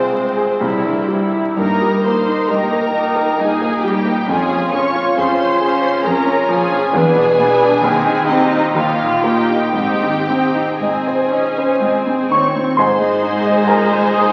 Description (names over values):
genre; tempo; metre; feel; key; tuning
classical, romantic movement for piano and orchestra; 57-68 BPM; 3/4; rubato; Ab major; A4 = 438 Hz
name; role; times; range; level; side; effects
clear grand piano; melody; 0.0-14.3 s; C2 to Eb6; -19 LUFS; equal; none
warm symphonic violin section; melody; 0.0-14.3 s; Bb4 to Db6; -27 LUFS; equal; none
rich studio violin section; second line; 0.0-14.3 s; C4 to Db5; -24 LUFS; equal; none
rich symphonic viola section; accompaniment; 0.0-14.3 s; G3 to F4; -24 LUFS; equal; none
mellow French horn section; sustained chords; 0.0-12.3 s; Eb4 to B4; -23 LUFS; equal; none
warm symphonic cello section; bass; 0.0-14.3 s; Eb2 to C3; -27 LUFS; equal; none
clear symphonic double bass section; bass; 12.8-14.3 s; Ab1; -34 LUFS; equal; none
room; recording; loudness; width
wet recital hall reverb, RT60 1.2 s; very old 78 rpm record, vinyl crackle; -16 LUFS; mono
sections
0.0-12.8 A section; 12.8-14.3 B section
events
none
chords
0.0 Fm/C; 0.6 C; 1.6 Eb/G; 4.3 Db/F; 6.9 E7; 7.8 Ab/Eb; 8.7 Eb; 9.7 Ab